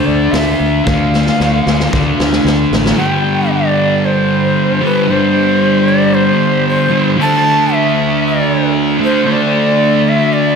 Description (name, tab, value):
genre	rock, shoegaze and dream pop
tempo	114 BPM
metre	4/4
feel	straight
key	unclear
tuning	A4 = 440 Hz
part	bright reedy shakuhachi	melody	0.0-10.6 s	B4 to A5	-16 LUFS	equal	analog delay
part	fuzz guitar	riff	0.0-10.6 s	G2 to D4	-12 LUFS	equal	distortion, lush chorus
part	growling fingered electric bass	bass	0.1-2.9 s	A1 to D2	-18 LUFS	right 1 dB	overdrive
part	raw garage drum kit	drums	0.3-3.0 s	hi-hat, kick drum, snare drum	-18 LUFS	equal	none
room	wet plate reverb, RT60 1.9 s, small room ambience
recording	dreamy mix soaked in reverb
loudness	-10 LUFS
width	side -6 dB against mid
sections	0.0-3.0 A section; 3.0-10.6 B section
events	drum fill 0.9-3.0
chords	0.0 Dm; 3.0 Gsus4; 7.2 D5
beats	0.34 | 0.86 1.39 1.92 2.45 | 2.97 3.50 4.03 4.55 | 5.07 5.60 6.12 6.65 | 7.17 7.69 8.22 8.74 | 9.27 9.79 10.31